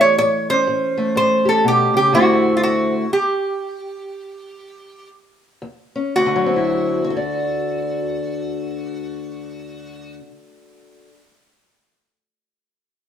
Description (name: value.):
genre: acoustic country blues, solo or duo.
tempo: 111-124 BPM.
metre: 4/4.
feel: swing 62% on 8ths.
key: D major.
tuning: A4 = 440 Hz.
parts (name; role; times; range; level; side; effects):
lap resonator guitar; melody; 0.0-10.2 s; F4 to C#5; -18 LUFS; right 1 dB; none.
fingerpicked steel-string acoustic guitar; accompaniment; 0.0-11.2 s; D2 to D5; -20 LUFS; left 2 dB; none.
room: moderate stone room reverb, RT60 1.0 s.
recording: band playing live in one room.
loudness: -16 LUFS.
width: side -8 dB against mid.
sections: 0.0-6.2 A section; 6.2-10.5 B section.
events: slowing down 2.1-6.2; stop 2.1-5.6.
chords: 0.0 A7; 2.1 D9; 5.6 C#sus2/D#; 6.2 D9.